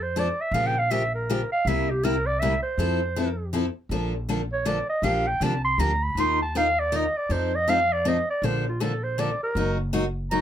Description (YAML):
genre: acoustic string swing (jazz manouche)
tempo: 160 BPM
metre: 3/4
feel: swing 61% on 8ths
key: F major, Bb major from 3.9 s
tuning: A4 = 439 Hz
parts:
  - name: growling clarinet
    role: melody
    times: 0.0-10.4 s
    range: F4 to C6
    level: -25 LUFS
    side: right 2 dB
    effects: plate reverb
  - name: upright bass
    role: bass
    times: 0.0-10.4 s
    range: Gb1 to F2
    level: -29 LUFS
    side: equal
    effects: none
  - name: picked steel-string acoustic guitar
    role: accompaniment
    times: 0.2-10.4 s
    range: C3 to Bb4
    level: -26 LUFS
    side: left 2 dB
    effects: none
room: moderate booth ambience, RT60 0.2 s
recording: none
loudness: -22 LUFS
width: side -10 dB against mid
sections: 0.0-3.9 A section; 3.9-10.4 A section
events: clarinet solo 0.0-10.4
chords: 0.0 F6; 0.5 Bbm6; 1.7 C7; 2.8 Fmaj7; 3.9 Bbmaj7; 5.0 Gm7/Bb; 6.2 Ebsus2; 7.3 F7; 8.4 Bbmaj7; 9.6 Gb6